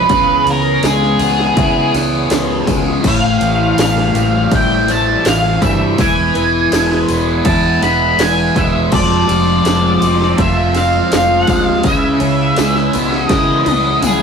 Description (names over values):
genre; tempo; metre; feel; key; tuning
psychedelic rock; 82 BPM; 4/4; straight; unclear; A4 = 440 Hz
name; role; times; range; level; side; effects
octave-fuzz lead guitar; melody; 0.0-14.2 s; G#4 to B5; -16 LUFS; equal; distortion
bright tonewheel organ; sustained chords; 0.0-14.2 s; E3 to C#5; -22 LUFS; right 3 dB; slow rotary speaker, overdrive
fuzz guitar; riff; 0.0-14.2 s; A2 to F4; -16 LUFS; left 1 dB; distortion, phaser
fingered electric bass; bass; 0.0-14.2 s; E1 to C#3; -20 LUFS; left 1 dB; none
techno drum kit; drums; 0.1-14.2 s; crash cymbal, kick drum, ride cymbal, snare drum, toms; -19 LUFS; equal; overdrive
tambourine; percussion; 0.1-14.2 s; none; -32 LUFS; left 6 dB; none
room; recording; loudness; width
moderate stone room reverb, RT60 1.2 s; rough rehearsal-room recording, warm saturation; -11 LUFS; side -6 dB against mid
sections
0.0-14.2 A section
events
drum fill 13.3-14.2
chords
0.1 C#m7; 3.1 Am7; 6.0 E; 8.9 Fm; 11.8 C#m7